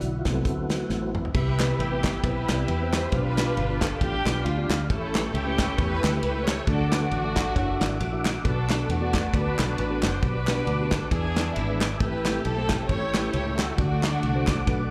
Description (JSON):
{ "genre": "uptempo gospel", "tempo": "135 BPM", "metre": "4/4", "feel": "swing 56% on 8ths", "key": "G major", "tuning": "A4 = 440 Hz", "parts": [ { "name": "mellow tine electric piano", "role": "accompaniment", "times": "0.0-14.8 s", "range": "A2 to E5", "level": "-34 LUFS", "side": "equal", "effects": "none" }, { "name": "tonewheel organ", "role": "sustained chords", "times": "0.0-14.9 s", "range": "F#3 to D6", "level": "-36 LUFS", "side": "equal", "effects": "chorus vibrato, slow rotary speaker" }, { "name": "fingered electric bass", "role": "bass", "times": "0.0-14.9 s", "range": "F#1 to E2", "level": "-31 LUFS", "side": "equal", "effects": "none" }, { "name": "natural country drum kit", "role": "drums", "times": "0.0-14.8 s", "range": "crash cymbal, hi-hat, kick drum, ride cymbal, snare drum, toms", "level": "-31 LUFS", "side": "equal", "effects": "none" }, { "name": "warm studio string section", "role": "melody", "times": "1.4-14.9 s", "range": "G#3 to C#5", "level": "-32 LUFS", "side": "equal", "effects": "slapback echo" }, { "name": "group handclap", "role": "percussion", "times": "1.6-14.6 s", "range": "none", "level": "-37 LUFS", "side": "equal", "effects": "slapback echo" } ], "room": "light reverb, studio reverb", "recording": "live gig heard through the venue's PA, club reverb", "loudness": "-25 LUFS", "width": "mono", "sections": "0.0-1.3 A section; 1.3-14.9 B section", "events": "tonewheel organ solo 0.0-1.3; drum fill 0.9-1.3", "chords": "0.0 D13; 1.3 Cmaj7; 3.1 G7; 4.9 A7; 6.7 D; 7.6 F#7b13; 8.4 Bm7; 10.2 Gmaj7/B; 11.1 E7; 12.0 Am7; 12.9 A7; 13.8 D" }